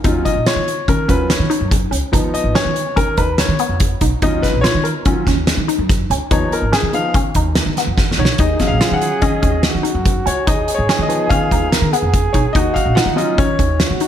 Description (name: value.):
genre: progressive instrumental, band music in an uneven meter.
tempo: 144 BPM.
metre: 5/4.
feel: straight.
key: Eb minor.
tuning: A4 = 440 Hz.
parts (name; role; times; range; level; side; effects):
clear baby grand piano; accompaniment; 0.0-14.0 s; F3 to Gb5; -20 LUFS; left 2 dB; slapback echo.
resonant blip pluck; arpeggios; 0.0-14.1 s; Cb4 to F4; -22 LUFS; left 1 dB; phaser, tape echo.
upright bass; bass; 0.0-14.0 s; Ab1 to Eb3; -20 LUFS; equal; none.
loose indie drum kit; drums; 0.0-14.1 s; hi-hat, kick drum, snare drum; -18 LUFS; equal; none.
breathy flugelhorn; second line; 8.4-14.1 s; Eb4 to Bb4; -22 LUFS; right 4 dB; slapback echo.
room: moderate lush hall reverb, RT60 1.8 s, small room ambience.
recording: big arena sound.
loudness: -14 LUFS.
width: side -10 dB against mid.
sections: 0.0-14.1 A section.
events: grand piano solo 0.0-14.1; drum fill 8.0-8.4.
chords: 0.0 Ebm9; 2.1 Db9; 4.2 Ebm9; 6.3 Db9; 8.4 Ebm9; 10.5 Db9; 12.6 Ebm9.